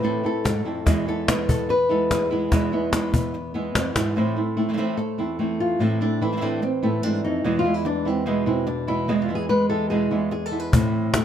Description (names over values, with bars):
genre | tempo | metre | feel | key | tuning
flamenco | 146 BPM | 4/4 | straight | unclear | A4 = 440 Hz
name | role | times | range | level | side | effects
flamenco guitar | melody | 0.0-11.2 s | E2 to C5 | -23 LUFS | left 2 dB | none
flamenco guitar | stabs | 0.0-11.2 s | E2 to E4 | -26 LUFS | right 5 dB | none
cajon | percussion | 0.0-4.1, 10.7-11.2 s | none | -22 LUFS | left 1 dB | none
room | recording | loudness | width
light reverb | close, detailed microphones | -20 LUFS | side -9 dB against mid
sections
0.0-4.2 A section; 4.2-11.2 B section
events
drum fill 4.0; nylon-string guitar solo 4.2-11.2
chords
0.0 Am; 0.9 E; 4.2 Am; 7.4 E; 10.7 Am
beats
0.04 0.46 | 0.87 1.28 1.70 2.11 | 2.52 2.93 3.34 3.75 | 4.17 4.58 4.99 5.40 | 5.81 6.22 6.63 7.04 | 7.45 7.86 8.27 8.68 | 9.09 9.50 9.91 10.32 | 10.73 11.14